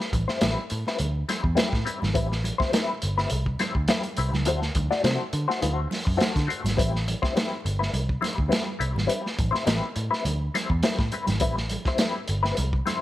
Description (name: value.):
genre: funk.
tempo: 104 BPM.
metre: 4/4.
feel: straight.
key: A dorian.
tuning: A4 = 441 Hz.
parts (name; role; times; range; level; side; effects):
mellow electric guitar; accompaniment; 0.0-13.0 s; G3 to D5; -28 LUFS; left 4 dB; wah, tremolo.
crunchy breakbeat drum kit; drums; 0.0-13.0 s; hi-hat, kick drum, snare drum; -27 LUFS; equal; none.
vintage muted picked electric bass; bass; 0.1-12.8 s; G1 to D3; -26 LUFS; equal; none.
congas; percussion; 0.1-13.0 s; none; -36 LUFS; right 3 dB; none.
room: light reverb.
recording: vinyl crackle.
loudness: -23 LUFS.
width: side -14 dB against mid.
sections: 0.0-13.0 A section.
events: none.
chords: 0.0 Am9; 4.5 D9; 6.8 Am9.